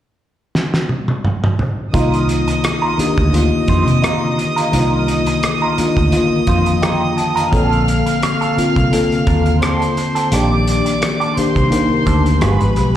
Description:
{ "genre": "lush 1970s-style soul", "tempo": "86 BPM", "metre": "4/4", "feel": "swing 54% on 16ths", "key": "C dorian", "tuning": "A4 = 440 Hz", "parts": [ { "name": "cloth-damped thuddy drum kit", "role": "drums", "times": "0.6-12.9 s", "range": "hi-hat, kick drum, rim click, snare drum, toms", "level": "-21 LUFS", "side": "right 1 dB", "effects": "none" }, { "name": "warm studio violin section", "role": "second line", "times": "1.9-13.0 s", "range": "B4 to F6", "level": "-22 LUFS", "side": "right 2 dB", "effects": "plate reverb, slapback echo" }, { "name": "mellow tine electric piano", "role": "accompaniment", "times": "1.9-13.0 s", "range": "D3 to A5", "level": "-17 LUFS", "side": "left 2 dB", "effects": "ensemble chorus, plate reverb, slapback echo" }, { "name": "clean electric guitar", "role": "riff", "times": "1.9-12.8 s", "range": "Bb3 to C5", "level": "-23 LUFS", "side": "right 4 dB", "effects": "wah, slapback echo" }, { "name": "vintage muted fingered electric bass", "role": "bass", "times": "1.9-13.0 s", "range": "G1 to C3", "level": "-17 LUFS", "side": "right 1 dB", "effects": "none" } ], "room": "light reverb", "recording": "live gig heard through the venue's PA, recital hall reverb", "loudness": "-13 LUFS", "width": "side -11 dB against mid", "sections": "0.0-1.9 A section; 1.9-13.0 B section", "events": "drum fill 0.5-1.9; tine electric piano fill 6.1-7.5", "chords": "0.0 N.C.; 1.9 Cm11; 7.5 Bbmaj9; 10.3 Ebmaj7/Bb; 12.4 G7b9", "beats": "0.54 1.24 | 1.94 2.64 3.33 4.03 | 4.73 5.43 6.13 6.83 | 7.53 8.22 8.92 9.62 | 10.32 11.02 11.72 12.42" }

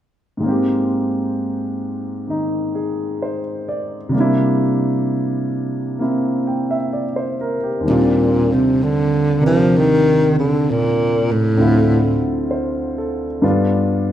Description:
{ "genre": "jazz", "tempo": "64 BPM", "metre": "4/4", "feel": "swing 67% on 8ths", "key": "Eb major", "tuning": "A4 = 441 Hz", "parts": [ { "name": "warm baby grand piano", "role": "accompaniment", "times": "0.4-14.1 s", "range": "D2 to G5", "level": "-18 LUFS", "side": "equal", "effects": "none" }, { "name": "mellow baritone saxophone", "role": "melody", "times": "7.9-12.2 s", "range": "A2 to F3", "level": "-15 LUFS", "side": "equal", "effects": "none" } ], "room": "wet large studio reverb, RT60 1.4 s", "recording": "minimal, uncompressed stereo recording", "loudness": "-16 LUFS", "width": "side -11 dB against mid", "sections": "0.4-7.9 A section; 7.9-14.1 B section", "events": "none", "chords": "0.4 Abmaj7; 4.1 C9; 7.9 Ebmaj13; 11.6 Dm7; 13.4 G7", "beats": "| 0.41 1.34 2.27 3.20 | 4.13 5.06 5.99 6.92 | 7.85 8.78 9.71 10.64 | 11.57 12.50 13.43" }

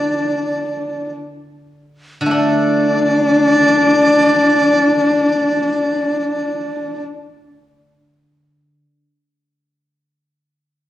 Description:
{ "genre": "chinese traditional", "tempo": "free time", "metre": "none", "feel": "none", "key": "unclear", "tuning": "A4 = 440 Hz", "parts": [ { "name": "dizi", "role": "melody", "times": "0.0-7.0 s", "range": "D5", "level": "-17 LUFS", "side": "right 1 dB", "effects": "none" }, { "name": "dark horsehead fiddle", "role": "second line", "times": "0.0-7.0 s", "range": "D4", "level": "-16 LUFS", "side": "left 2 dB", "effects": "none" }, { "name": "steel-string zither", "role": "accompaniment", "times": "0.0-8.8 s", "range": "D3 to D4", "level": "-22 LUFS", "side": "equal", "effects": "none" } ], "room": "wet recital hall reverb, RT60 1.4 s", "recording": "worn, warbling old tape, cassette tape, warbly pitch drift", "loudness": "-13 LUFS", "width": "side -13 dB against mid", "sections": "0.0-2.3 A section; 2.3-7.2 B section", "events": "slowing down 0.0-2.3", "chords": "none", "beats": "free time" }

